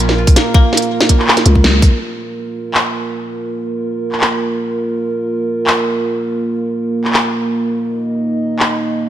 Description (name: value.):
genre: half-time drum and bass.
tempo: 164 BPM.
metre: 4/4.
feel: half-time.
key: Bb minor.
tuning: A4 = 440 Hz.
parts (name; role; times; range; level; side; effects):
dark analog pad; sustained chords; 0.0-9.1 s; Bb3 to Eb5; -18 LUFS; right 2 dB; chorus, sidechain pumping.
koto; arpeggios; 0.0-3.3 s; Bb2 to F4; -20 LUFS; left 1 dB; digital delay.
growling 808-style bass; bass; 0.0-1.9 s; Bb1 to Db2; -12 LUFS; equal; tube saturation.
industrial drum kit; drums; 0.0-8.7 s; handclaps, hi-hat, snare drum; -16 LUFS; equal; none.
electronic kick drum; drums; 0.3-1.9 s; none; -10 LUFS; equal; none.
room: moderate lush hall reverb, RT60 2.0 s.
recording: none.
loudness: -13 LUFS.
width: side -11 dB against mid.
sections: 0.0-2.0 A section; 2.0-9.1 B section.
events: drop 0.0-2.0; band accent 1.6.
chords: 0.0 Bbm; 2.0 Bb5.